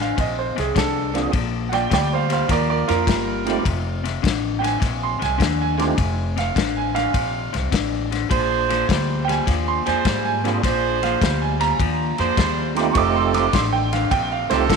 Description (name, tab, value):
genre	electric blues shuffle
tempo	103 BPM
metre	4/4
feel	swing 67% on 8ths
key	unclear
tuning	A4 = 441 Hz
part	bright upright piano	second line	0.0-14.8 s	F4 to D6	-24 LUFS	right 10 dB	none
part	electric guitar through a small old amp	riff	0.0-14.8 s	F2 to G3	-26 LUFS	left 14 dB	none
part	upright bass	bass	0.0-14.8 s	F1 to Ab2	-25 LUFS	equal	none
part	warm soul drum kit	drums	0.0-14.8 s	kick drum, ride cymbal, snare drum	-25 LUFS	left 3 dB	none
part	tonewheel organ	accompaniment	1.1-6.0, 10.4-14.7 s	A3 to Ab4	-24 LUFS	right 12 dB	slow rotary speaker, overdrive, chorus vibrato
part	clear saxophone section	stabs	8.3-14.8 s	D4 to C5	-24 LUFS	right 10 dB	tape echo
room	moderate echo chamber reverb, RT60 2.4 s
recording	1960s-style stereo with parts hard left and right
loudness	-18 LUFS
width	side -5 dB against mid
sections	0.0-14.8 A section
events	upright piano solo 0.0-14.8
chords	0.0 F; 1.3 Bbadd9; 3.7 F7; 8.3 Bb9; 13.0 F9